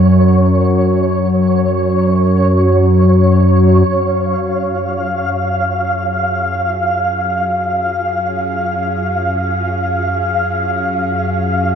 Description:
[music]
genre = dark ambient drone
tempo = free time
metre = none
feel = none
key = unclear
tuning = A4 = 440 Hz
[part]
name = analog drone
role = drone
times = 0.0-11.8 s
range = F#2 to F#3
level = -14 LUFS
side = equal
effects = chorus
[part]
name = flickering grainy texture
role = texture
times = 0.0-11.8 s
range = C#5 to E#5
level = -17 LUFS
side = equal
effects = built-in reverb
[part]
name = warm studio cello section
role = sustained chords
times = 3.9-11.8 s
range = F#3 to G#4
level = -29 LUFS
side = left 1 dB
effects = none
[sound]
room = wet huge ambient reverb, RT60 7.1 s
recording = in a vast, echoing space, cassette tape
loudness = -12 LUFS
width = side -8 dB against mid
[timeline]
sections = 0.0-3.9 A section; 3.9-11.8 B section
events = fade-in on synth drone 3.9-11.8; fade-in on cello section 3.9-11.8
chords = 0.0 F#5; 3.9 F#sus2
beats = free time

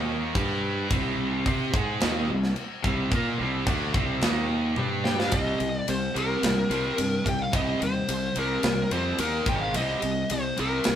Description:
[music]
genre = hard rock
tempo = 109 BPM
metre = 4/4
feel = straight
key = C minor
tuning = A4 = 444 Hz
[part]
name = cranked stack guitar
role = riff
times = 0.0-11.0 s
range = Ab2 to C5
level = -30 LUFS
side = right 5 dB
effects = overdrive
[part]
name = tight distorted guitar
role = riff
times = 0.0-11.0 s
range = Ab2 to C5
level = -32 LUFS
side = left 6 dB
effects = distortion
[part]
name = fuzz fingered electric bass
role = bass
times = 0.0-11.0 s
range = Ab1 to C3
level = -32 LUFS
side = equal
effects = overdrive
[part]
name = tight metal drum kit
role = drums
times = 0.3-11.0 s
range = crash cymbal, kick drum, ride cymbal, snare drum, toms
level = -29 LUFS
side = equal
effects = none
[part]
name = high-gain lead guitar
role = melody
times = 5.0-11.0 s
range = Bb4 to G5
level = -28 LUFS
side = left 1 dB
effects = distortion
[sound]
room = moderate stone room reverb, RT60 1.0 s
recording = band playing live in one room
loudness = -23 LUFS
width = side -10 dB against mid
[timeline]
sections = 0.0-5.3 A section; 5.3-11.0 B section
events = drum fill 4.8-5.3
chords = 0.4 G5; 0.9 Cm; 4.2 Eb5; 4.8 G5; 5.3 Cm; 9.2 Eb5; 9.5 Ab5; 9.8 Cm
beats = 0.36 | 0.91 1.46 2.01 2.57 | 3.12 3.67 4.22 4.78 | 5.33 5.88 6.43 6.99 | 7.54 8.09 8.64 9.20 | 9.75 10.30 10.86

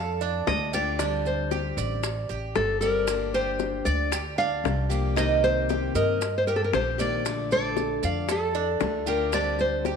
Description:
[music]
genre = latin, Cuban son and guajira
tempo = 115 BPM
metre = 4/4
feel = straight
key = G minor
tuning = A4 = 440 Hz
[part]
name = nylon-string guitar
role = melody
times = 0.0-10.0 s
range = A4 to F5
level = -27 LUFS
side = left 2 dB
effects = none
[part]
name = Cuban tres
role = arpeggios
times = 0.0-10.0 s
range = D4 to Eb5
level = -30 LUFS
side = right 9 dB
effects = none
[part]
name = upright bass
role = bass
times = 0.0-10.0 s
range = G1 to G2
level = -30 LUFS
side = equal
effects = none
[part]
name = maracas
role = percussion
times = 0.2-10.0 s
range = none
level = -38 LUFS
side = right 14 dB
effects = none
[part]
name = picked plugged-in steel-string acoustic guitar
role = accompaniment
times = 0.5-10.0 s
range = C3 to G4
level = -33 LUFS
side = left 11 dB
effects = none
[part]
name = bongos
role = percussion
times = 0.5-10.0 s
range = none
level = -32 LUFS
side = left 12 dB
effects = none
[sound]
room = moderate echo chamber reverb, RT60 1.4 s, small room ambience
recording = 1960s-style stereo with parts hard left and right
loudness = -23 LUFS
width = side -6 dB against mid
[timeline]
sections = 0.0-10.0 A section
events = none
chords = 0.0 Bbmaj7 (rootless); 1.0 D7sus4; 3.1 Gm7; 5.2 Cm7; 7.3 Bbmaj7; 9.3 D7sus4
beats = 0.47 | 0.99 1.52 2.04 2.56 | 3.08 3.60 4.12 4.64 | 5.17 5.69 6.21 6.73 | 7.25 7.77 8.29 8.82 | 9.34 9.86

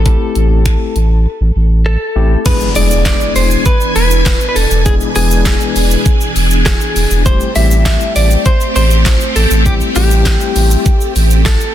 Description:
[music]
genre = dance-pop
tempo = 100 BPM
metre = 4/4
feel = straight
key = A minor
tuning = A4 = 440 Hz
[part]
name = direct-recorded clean electric guitar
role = melody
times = 0.0-11.7 s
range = G4 to E5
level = -18 LUFS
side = equal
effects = digital delay
[part]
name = warm sub bass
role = bass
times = 0.0-11.6 s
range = E1 to A1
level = -12 LUFS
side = equal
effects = sidechain pumping
[part]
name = tine electric piano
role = accompaniment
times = 0.1-10.9 s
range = G3 to B4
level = -20 LUFS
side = left 8 dB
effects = medium tremolo
[part]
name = pop drum kit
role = drums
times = 0.1-11.7 s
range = crash cymbal, finger snaps, handclaps, hi-hat, kick drum, shaker, snare drum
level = -14 LUFS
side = equal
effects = soft clipping on snare
[part]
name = phased string machine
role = sustained chords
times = 2.5-11.7 s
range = B2 to G#5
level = -18 LUFS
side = equal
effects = ensemble chorus, phaser, sidechain pumping
[part]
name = impact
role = sound effects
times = 2.5-4.9 s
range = none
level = -22 LUFS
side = equal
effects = none
[part]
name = tambourine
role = percussion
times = 3.1-11.6 s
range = none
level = -32 LUFS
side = right 10 dB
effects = none
[sound]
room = little or no reverb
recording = dense, heavily limited modern master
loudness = -9 LUFS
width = side -12 dB against mid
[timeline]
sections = 0.0-2.5 A section; 2.5-11.7 B section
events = drums muted 1.3-2.5; impact 2.5-4.9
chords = 0.0 Am7; 2.5 E7; 7.3 Am7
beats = | 0.06 0.66 1.26 1.86 | 2.46 3.06 3.66 4.26 | 4.86 5.46 6.06 6.66 | 7.26 7.86 8.46 9.06 | 9.66 10.26 10.86 11.46

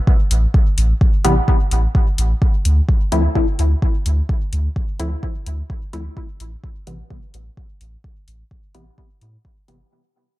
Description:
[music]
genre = dub techno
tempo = 128 BPM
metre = 4/4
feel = straight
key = unclear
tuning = A4 = 440 Hz
[part]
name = electronic kick drum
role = drums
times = 0.1-9.5 s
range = none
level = -17 LUFS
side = equal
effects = overdrive
[part]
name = soft dub sub bass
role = bass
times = 0.3-9.8 s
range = G1 to A2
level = -17 LUFS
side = equal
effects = sidechain pumping
[part]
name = electronic hi-hat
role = drums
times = 0.3-9.8 s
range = none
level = -27 LUFS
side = left 4 dB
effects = overdrive
[part]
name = filtered dub chord stab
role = stabs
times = 1.2-9.8 s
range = C3 to E4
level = -23 LUFS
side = left 2 dB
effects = chorus, phaser, sidechain pumping, dub echo
[sound]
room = digital ambience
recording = dark, warm production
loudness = -15 LUFS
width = side -16 dB against mid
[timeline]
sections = 0.0-9.9 A section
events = fade-out 0.0-9.9; filter sweep on synth stab 0.0-9.9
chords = 0.0 N.C.; 2.4 Dm9; 6.2 Am9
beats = 0.07 | 0.54 1.01 1.48 1.95 | 2.42 2.89 3.35 3.82 | 4.29 4.76 5.23 5.70 | 6.17 6.64 7.11 7.57 | 8.04 8.51 8.98 9.45

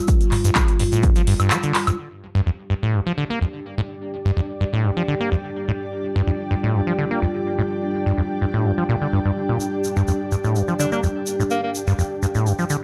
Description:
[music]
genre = acid house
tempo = 126 BPM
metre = 4/4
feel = straight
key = unclear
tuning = A4 = 440 Hz
[part]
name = dark analog pad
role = sustained chords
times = 0.0-12.8 s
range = G3 to G4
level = -32 LUFS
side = equal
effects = subtle chorus, sidechain pumping
[part]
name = booming analog drum machine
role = drums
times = 0.1-2.0 s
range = handclaps, hi-hat, toms, woodblock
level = -25 LUFS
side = equal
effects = none
[part]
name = electronic kick drum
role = drums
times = 0.1-1.1 s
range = none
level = -21 LUFS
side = equal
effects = none
[part]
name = egg shaker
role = percussion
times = 0.1-2.0, 9.6-12.8 s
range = none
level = -36 LUFS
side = equal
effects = none
[part]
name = acid bass, saw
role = riff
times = 0.4-12.8 s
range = F2 to Bb3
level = -23 LUFS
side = equal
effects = tape echo
[part]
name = granular cloud pad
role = texture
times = 3.2-12.8 s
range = D4 to G5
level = -29 LUFS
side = equal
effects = built-in reverb, sidechain pumping
[part]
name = bright alto saxophone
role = melody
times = 10.8-11.7 s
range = Bb3 to D4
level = -29 LUFS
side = equal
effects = tape echo
[sound]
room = wet studio reverb, RT60 0.6 s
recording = dark, warm production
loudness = -22 LUFS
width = mono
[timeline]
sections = 0.0-2.0 A section; 2.0-12.8 B section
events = break 1.5-2.0; drum fill 1.7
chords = 0.0 G5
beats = | 0.08 0.56 1.03 1.51 | 1.99 2.46 2.94 3.41 | 3.89 4.37 4.84 5.32 | 5.79 6.27 6.75 7.22 | 7.70 8.18 8.65 9.13 | 9.61 10.08 10.56 11.03 | 11.51 11.99 12.46

